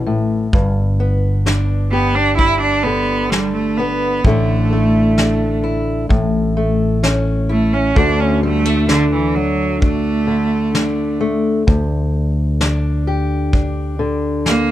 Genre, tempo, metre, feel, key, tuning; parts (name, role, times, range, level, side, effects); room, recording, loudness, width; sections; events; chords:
acoustic folk duo or small band; 65 BPM; 4/4; straight; A4 = 440 Hz
fingerpicked old ladder-braced acoustic guitar; accompaniment; 0.0-14.7 s; D2 to G4; -19 LUFS; left 2 dB
fretless electric bass; bass; 0.0-14.7 s; G1 to D2; -19 LUFS; equal
soft brush drum kit; drums; 0.5-14.7 s; kick drum, snare drum; -17 LUFS; equal
rich cello; second line; 1.9-14.7 s; D3 to E4; -17 LUFS; right 3 dB
little or no reverb; close, detailed microphones; -14 LUFS; side -13 dB against mid
0.0-14.7 A section
cello solo 0.0-14.7
0.0 A; 0.5 G; 4.2 Asus4; 6.1 A; 8.0 D; 11.7 G5/D